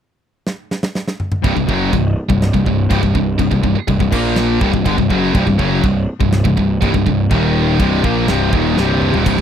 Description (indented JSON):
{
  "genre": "heavy metal",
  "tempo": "123 BPM",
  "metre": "4/4",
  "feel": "straight",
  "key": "C minor",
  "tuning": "A4 = 441 Hz",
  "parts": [
    { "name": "tight metal drum kit", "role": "drums", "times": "0.5-9.4 s", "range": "china cymbal, crash cymbal, kick drum, snare drum, toms", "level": "-19 LUFS", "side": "equal", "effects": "none" },
    { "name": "distorted electric guitar", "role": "riff", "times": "1.4-9.4 s", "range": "C2 to Bb3", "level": "-19 LUFS", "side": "left 10 dB", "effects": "distortion" },
    { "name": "heavy high-gain guitar", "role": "riff", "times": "1.4-9.4 s", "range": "C2 to Bb3", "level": "-20 LUFS", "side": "right 11 dB", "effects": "distortion" },
    { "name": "sludgy distorted guitar", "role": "riff", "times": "1.4-9.4 s", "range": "C2 to Bb3", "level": "-20 LUFS", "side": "right 1 dB", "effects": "overdrive" },
    { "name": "fuzz picked electric bass", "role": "bass", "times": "1.4-9.4 s", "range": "C1 to Bb1", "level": "-19 LUFS", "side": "equal", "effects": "overdrive" }
  ],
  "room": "little or no reverb",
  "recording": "dry, close 1970s-style studio recording",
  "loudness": "-13 LUFS",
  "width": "side -9 dB against mid",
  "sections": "0.0-1.4 A section; 1.4-9.4 B section",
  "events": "drum fill 0.5-1.4, 8.8-9.3",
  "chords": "0.0 N.C.; 1.4 C5; 4.1 Bb5; 4.6 C5; 7.3 Eb5; 7.8 Cm",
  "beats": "0.46 0.95 | 1.44 1.93 2.42 2.91 | 3.40 3.89 4.38 4.87 | 5.35 5.84 6.33 6.82 | 7.31 7.80 8.29 8.78 | 9.26"
}